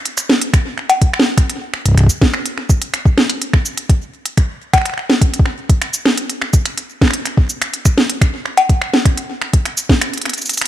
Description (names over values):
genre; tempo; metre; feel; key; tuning
IDM; 125 BPM; 4/4; straight; none; none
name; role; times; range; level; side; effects
organic electronic drum kit; drums; 0.1-10.7 s; cabasa, cowbell, finger snaps, hi-hat, snare drum; -16 LUFS; equal; small room ambience, digital delay
electronic kick drum; drums; 0.5-10.0 s; none; -12 LUFS; equal; small room ambience
room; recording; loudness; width
light reverb; none; -13 LUFS; side -12 dB against mid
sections
0.0-10.7 A section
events
none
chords
none